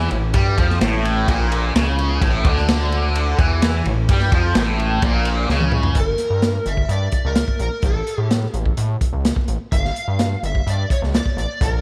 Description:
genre	psychedelic rock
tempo	128 BPM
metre	4/4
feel	straight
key	A phrygian dominant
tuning	A4 = 440 Hz
part	fuzz guitar	riff	0.0-6.0 s	A2 to G3	-23 LUFS	equal	distortion, phaser
part	gritty driven synth bass	bass	0.0-11.8 s	G1 to A2	-23 LUFS	equal	none
part	crunchy breakbeat drum kit	drums	0.0-11.7 s	hi-hat, kick drum, ride cymbal, snare drum, toms	-23 LUFS	equal	none
part	overdriven slide guitar	melody	6.0-11.8 s	A4 to F5	-28 LUFS	equal	lush chorus, analog delay
room	light reverb, small room ambience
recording	none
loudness	-19 LUFS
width	mono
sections	0.0-6.0 A section; 6.0-11.8 B section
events	drum fill 5.5-6.0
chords	0.0 A; 6.0 Gm; 7.8 A; 9.7 Fsus2/G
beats	| 0.35 0.82 1.28 1.75 | 2.22 2.69 3.15 3.62 | 4.09 4.56 5.03 5.49 | 5.96 6.43 6.90 7.37 | 7.84 8.31 8.78 9.25 | 9.72 10.19 10.66 11.13 | 11.60

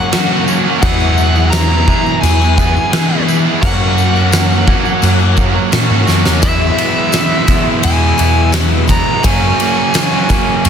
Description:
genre	rock, shoegaze and dream pop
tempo	86 BPM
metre	4/4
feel	straight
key	unclear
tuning	A4 = 438 Hz
part	nasal lead guitar with a parked wah	melody	0.0-10.7 s	E5 to A#5	-18 LUFS	equal	overdrive, analog delay
part	semi-hollow electric guitar	arpeggios	0.0-10.7 s	F#3 to G#4	-24 LUFS	right 14 dB	analog chorus, analog delay
part	overdriven electric guitar	riff	0.0-10.7 s	E3 to G#4	-20 LUFS	left 14 dB	lush chorus
part	overdriven electric guitar	riff	0.0-10.7 s	E3 to G#4	-20 LUFS	left 1 dB	none
part	biting overdriven guitar	riff	0.1-10.7 s	E2 to G#4	-19 LUFS	right 13 dB	reverse reverb
part	picked electric bass	bass	0.1-10.7 s	E2 to F#3	-14 LUFS	equal	none
part	huge arena drum kit	drums	0.1-10.7 s	crash cymbal, kick drum, ride cymbal, snare drum	-16 LUFS	equal	none
part	tambourine	percussion	0.1-10.7 s	none	-29 LUFS	left 12 dB	none
room	studio reverb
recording	dense, heavily limited modern master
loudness	-10 LUFS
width	side -8 dB against mid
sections	0.0-6.4 A section; 6.4-10.7 B section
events	drum fill 6.1-6.4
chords	0.0 F#; 0.8 Eadd9; 3.6 F#; 6.4 Eadd9; 9.2 F#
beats	0.12 | 0.82 1.52 2.23 2.92 | 3.62 4.32 5.02 5.72 | 6.43 7.13 7.83 8.53 | 9.24 9.94 10.65

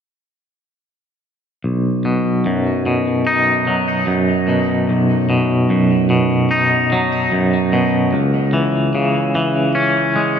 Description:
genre	rock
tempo	74 BPM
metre	4/4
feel	straight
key	B major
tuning	A4 = 440 Hz
part	twangy electric guitar	arpeggios	1.6-10.4 s	B1 to D#4	-14 LUFS	equal	tremolo, tape echo
room	wet scoring stage reverb, RT60 1.9 s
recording	none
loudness	-14 LUFS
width	side -7 dB against mid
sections	1.6-10.4 A section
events	none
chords	1.6 B; 8.1 C#m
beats	| 1.64 2.45 3.27 4.08 | 4.90 5.71 6.52 7.34 | 8.15 8.96 9.77

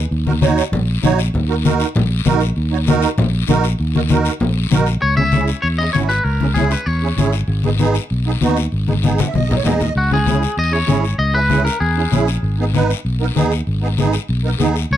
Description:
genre	latin, cumbia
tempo	194 BPM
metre	4/4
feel	straight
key	G# minor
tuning	A4 = 440 Hz
part	fingered electric bass	bass	0.0-15.0 s	G#1 to E2	-18 LUFS	equal	none
part	guiro	percussion	0.1-15.0 s	none	-29 LUFS	left 9 dB	none
part	musette accordion	accompaniment	0.3-14.8 s	B3 to F#5	-20 LUFS	right 5 dB	none
part	congas	percussion	0.3-14.8 s	none	-19 LUFS	left 3 dB	none
part	twangy electric guitar	melody	5.0-7.3, 10.0-12.2, 14.9-15.0 s	F#4 to E5	-20 LUFS	left 2 dB	spring reverb, plate reverb
room	light reverb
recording	dark, warm production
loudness	-14 LUFS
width	side -11 dB against mid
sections	0.0-5.0 A section; 5.0-15.0 B section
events	accordion fill 9.0-10.0; drum fill 9.2-10.0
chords	0.1 D#m; 5.0 C#m; 7.5 G#m; 10.0 C#m; 12.4 G#m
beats	| 0.11 0.42 0.73 1.03 | 1.34 1.65 1.95 2.26 | 2.57 2.87 3.18 3.49 | 3.79 4.10 4.41 4.71 | 5.02 5.33 5.64 5.94 | 6.25 6.56 6.87 7.17 | 7.48 7.79 8.10 8.41 | 8.72 9.03 9.34 9.65 | 9.96 10.27 10.57 10.88 | 11.19 11.50 11.81 12.12 | 12.43 12.74 13.05 13.36 | 13.67 13.98 14.29 14.60 | 14.90

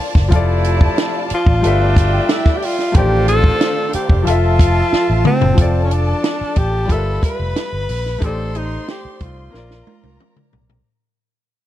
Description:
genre	lush 1970s-style soul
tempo	91 BPM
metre	4/4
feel	straight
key	F major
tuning	A4 = 440 Hz
part	warm studio violin section	second line	0.0-10.8 s	D4 to C6	-26 LUFS	left 1 dB	none
part	clear baby grand piano	accompaniment	0.0-10.9 s	Eb3 to E5	-24 LUFS	left 4 dB	none
part	fingered electric bass	bass	0.2-10.8 s	F1 to C2	-18 LUFS	equal	none
part	compact cocktail drum kit	drums	0.2-10.8 s	hi-hat, kick drum, snare drum, toms	-15 LUFS	equal	none
part	warm horn section	stabs	0.3-5.2 s	B2 to E5	-25 LUFS	equal	none
part	breathy tenor saxophone	melody	1.3-10.5 s	C4 to B4	-20 LUFS	equal	none
room	little or no reverb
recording	dark, warm production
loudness	-13 LUFS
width	side -13 dB against mid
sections	0.0-5.6 A section; 5.6-10.9 B section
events	drum fill 4.9-5.6, 9.5-10.9; fade-out 5.6-10.9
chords	0.3 F6; 1.6 G13; 3.0 F13/A; 4.3 Fmaj7; 5.6 F6; 6.9 G13; 8.2 F13/A; 9.5 Bbadd9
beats	| 0.32 0.98 1.64 2.29 | 2.95 3.61 4.26 4.92 | 5.58 6.24 6.90 7.55 | 8.21 8.87 9.53 10.19

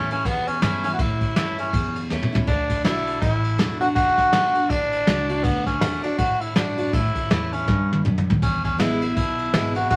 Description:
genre	rockabilly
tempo	161 BPM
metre	4/4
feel	swing 59% on 8ths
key	A mixolydian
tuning	A4 = 439 Hz
part	growling tenor saxophone	melody	0.0-10.0 s	B3 to F#4	-26 LUFS	equal	none
part	picked steel-string acoustic guitar	accompaniment	0.0-10.0 s	E2 to F#4	-29 LUFS	equal	none
part	upright bass	bass	0.0-10.0 s	E1 to A2	-32 LUFS	equal	none
part	soft brush drum kit	drums	0.1-10.0 s	kick drum, ride cymbal, snare drum, splash cymbal, toms	-26 LUFS	equal	none
room	moderate studio reverb, RT60 0.5 s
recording	vinyl crackle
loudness	-22 LUFS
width	mono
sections	0.0-10.0 A section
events	drum fill 2.1-2.5, 7.7-8.4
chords	0.0 A; 2.5 D; 6.9 A; 8.4 E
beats	0.25 0.62 | 0.99 1.36 1.73 2.10 | 2.47 2.85 3.22 3.59 | 3.96 4.33 4.70 5.08 | 5.45 5.82 6.19 6.56 | 6.94 7.31 7.68 8.05 | 8.42 8.80 9.17 9.54 | 9.91

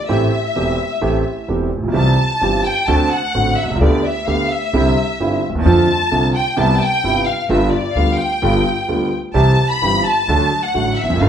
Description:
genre	tango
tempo	129 BPM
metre	4/4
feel	rubato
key	C major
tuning	A4 = 439 Hz
part	warm symphonic violin section	second line	0.0-11.3 s	D5 to B5	-19 LUFS	left 1 dB	none
part	warm concert grand piano	accompaniment	0.1-11.3 s	E1 to G4	-17 LUFS	right 2 dB	none
part	upright bass	bass	0.1-11.3 s	E1 to F2	-20 LUFS	equal	none
room	wet large studio reverb, RT60 0.9 s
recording	band playing live in one room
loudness	-14 LUFS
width	side -9 dB against mid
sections	0.0-11.3 A section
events	violin section solo 0.0-11.3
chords	0.1 Am7; 2.0 C; 2.9 D7; 3.8 Gadd9/D; 4.7 Cadd9; 5.7 F6; 6.6 Cmaj7; 7.5 G7; 9.4 C; 10.3 D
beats	| 0.09 0.56 1.02 1.49 | 1.95 2.42 2.88 3.35 | 3.81 4.28 4.74 5.20 | 5.66 6.12 6.58 7.04 | 7.50 7.96 8.42 8.89 | 9.35 9.82 10.28 10.75 | 11.21

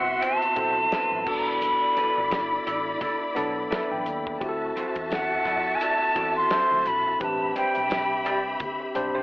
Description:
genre	lush 1970s-style soul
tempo	86 BPM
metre	4/4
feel	swing 58% on 16ths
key	A dorian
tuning	A4 = 440 Hz
part	hollow concert flute	melody	0.0-8.6 s	F#5 to C6	-24 LUFS	equal	none
part	warm studio string section	second line	0.0-9.2 s	E4 to C6	-29 LUFS	left 1 dB	none
part	tine electric piano	accompaniment	0.0-9.2 s	F#3 to G5	-31 LUFS	left 1 dB	overdrive
part	electric guitar through a small old amp	riff	0.0-9.2 s	C4 to D5	-33 LUFS	right 1 dB	none
part	vintage muted fingered electric bass	bass	0.0-9.2 s	E1 to F#2	-44 LUFS	equal	none
part	warm soul drum kit	drums	0.2-9.1 s	crash cymbal, hi-hat, kick drum, snare drum	-32 LUFS	equal	none
part	congas	percussion	0.6-9.1 s	none	-45 LUFS	right 1 dB	none
room	light reverb, small room ambience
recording	telephone sound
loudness	-22 LUFS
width	side -22 dB against mid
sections	0.0-9.2 A section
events	tine electric piano fill 3.4-4.4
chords	0.0 Am69; 1.3 E7sus4; 4.4 D9; 7.2 Am11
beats	0.22 0.92 | 1.62 2.32 3.02 3.72 | 4.42 5.11 5.81 6.51 | 7.21 7.91 8.61

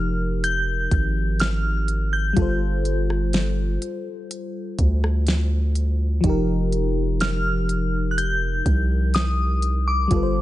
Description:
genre	contemporary R&B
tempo	62 BPM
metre	4/4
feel	straight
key	unclear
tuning	A4 = 438 Hz
part	glassy synth bell	melody	0.0-10.4 s	D6 to G6	-26 LUFS	left 1 dB	chorus, tremolo, ping-pong delay
part	mellow FM electric piano	accompaniment	0.0-10.4 s	F3 to C5	-27 LUFS	left 2 dB	chorus
part	long sustained 808-style bass	bass	0.0-10.4 s	F1 to D2	-22 LUFS	equal	none
part	smooth R&B drum kit	drums	0.4-10.3 s	hi-hat, kick drum, rim click, snare drum	-24 LUFS	equal	vintage 12-bit sampler grit
room	little or no reverb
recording	nothing above 10.4 kHz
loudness	-20 LUFS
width	side -15 dB against mid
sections	0.0-10.4 A section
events	none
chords	0.0 F9sus4; 2.4 G9sus4; 6.2 F9sus4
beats	0.43 1.40 | 2.37 3.34 4.30 5.27 | 6.24 7.21 8.17 9.14 | 10.11

